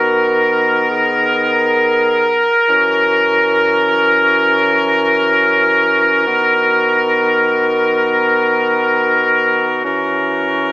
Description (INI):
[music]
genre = hip hop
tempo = free time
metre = none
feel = none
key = B major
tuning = A4 = 441 Hz
[part]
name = clear woodwind section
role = solo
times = 0.0-10.7 s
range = D#3 to A#4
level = -11 LUFS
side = equal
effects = none
[sound]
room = moderate huge ambient reverb, RT60 5.0 s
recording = small speaker sound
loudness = -11 LUFS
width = side -21 dB against mid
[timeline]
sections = 0.0-10.7 A section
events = none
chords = 0.0 Bmaj7; 2.7 F#7; 6.3 Bmaj7; 9.8 F#7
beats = free time